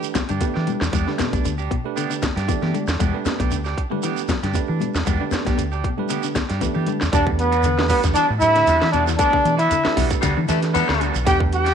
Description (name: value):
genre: afrobeat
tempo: 116 BPM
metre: 4/4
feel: swing 54% on 16ths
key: E minor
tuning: A4 = 435 Hz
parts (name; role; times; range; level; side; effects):
- bell-like tine electric piano; accompaniment; 0.0-11.7 s; A3 to D5; -29 LUFS; right 13 dB; none
- semi-hollow electric guitar; arpeggios; 0.0-11.4 s; B2 to F#3; -30 LUFS; left 10 dB; analog chorus
- electric guitar at the edge of break-up; stabs; 0.0-11.7 s; G3 to G4; -29 LUFS; right 11 dB; none
- shekere; percussion; 0.0-11.7 s; none; -31 LUFS; right 4 dB; none
- drum and bass drum kit; drums; 0.1-11.7 s; hi-hat, kick drum, snare drum; -24 LUFS; equal; none
- congas; percussion; 0.2-7.0 s; none; -28 LUFS; left 12 dB; none
- deep dub fingered electric bass; bass; 0.3-11.7 s; B1 to E3; -23 LUFS; equal; none
- bright trombone; melody; 7.1-11.7 s; B3 to G4; -18 LUFS; left 1 dB; none
- clear trumpet; second line; 7.1-11.7 s; B4 to G5; -27 LUFS; right 10 dB; none
- raspy baritone saxophone; second line; 10.2-11.1 s; G3 to B3; -24 LUFS; left 10 dB; none
room: light reverb, small room ambience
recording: 1960s-style stereo with parts hard left and right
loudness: -18 LUFS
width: side -8 dB against mid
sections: 0.0-7.1 A section; 7.1-11.7 B section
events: none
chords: 0.0 Em9